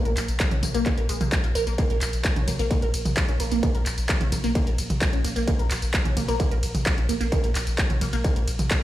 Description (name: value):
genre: driving peak-time techno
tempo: 130 BPM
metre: 4/4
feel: straight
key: Bb minor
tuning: A4 = 439 Hz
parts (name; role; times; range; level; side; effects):
- resonant blip pluck; riff; 0.1-8.4 s; Ab3 to Bb4; -29 LUFS; right 1 dB; phaser, lush chorus, cassette tape, sidechain pumping, ping-pong delay
- saturated sub bass; bass; 0.1-8.7 s; Bb1; -28 LUFS; equal; sidechain pumping, low-pass filter
- punchy analog drum machine; drums; 0.1-8.8 s; handclaps, hi-hat, ride cymbal, tambourine, toms; -28 LUFS; equal; none
- electronic kick drum; drums; 0.4-8.8 s; none; -24 LUFS; equal; distortion
room: digital ambience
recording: played on a big sound system in a bare room, stone room reverb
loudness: -21 LUFS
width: side -14 dB against mid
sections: 0.0-8.8 A section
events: none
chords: none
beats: 0.40 0.86 1.32 | 1.78 2.25 2.71 3.17 | 3.63 4.09 4.55 5.01 | 5.48 5.94 6.40 6.86 | 7.32 7.78 8.24 8.71